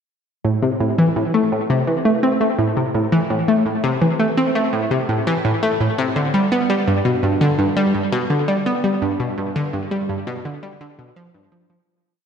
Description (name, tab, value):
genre	ambient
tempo	84 BPM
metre	4/4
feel	straight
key	A minor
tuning	A4 = 440 Hz
part	analog pluck	solo	0.4-11.8 s	G2 to C4	-17 LUFS	equal	chorus, tape echo
room	wet lush hall reverb, RT60 2.5 s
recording	dreamy mix soaked in reverb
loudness	-16 LUFS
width	side -7 dB against mid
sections	0.4-11.9 A section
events	fade-out 8.1-11.9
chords	none